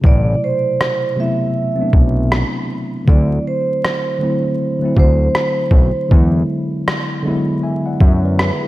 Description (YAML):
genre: lo-fi hip hop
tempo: 79 BPM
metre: 4/4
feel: swing 60% on 16ths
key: A dorian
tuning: A4 = 440 Hz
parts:
  - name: mellow tine electric piano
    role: accompaniment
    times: 0.0-8.7 s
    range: B2 to G#5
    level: -19 LUFS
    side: left 1 dB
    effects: medium stereo tremolo, cassette tape
  - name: fat analog bass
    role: bass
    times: 0.0-8.5 s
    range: A1 to F#2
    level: -16 LUFS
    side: equal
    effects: none
  - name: lo-fi sampler-style drum kit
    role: drums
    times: 0.0-8.6 s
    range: kick drum, rim click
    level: -14 LUFS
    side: equal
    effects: none
  - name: vibraphone with medium hard mallets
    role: melody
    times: 0.1-6.1 s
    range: C5 to E5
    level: -21 LUFS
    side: right 3 dB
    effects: none
room: light reverb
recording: vinyl crackle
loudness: -14 LUFS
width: side -17 dB against mid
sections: 0.0-8.7 A section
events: break 0.0-8.7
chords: 0.0 Am69; 3.1 D9; 6.1 E9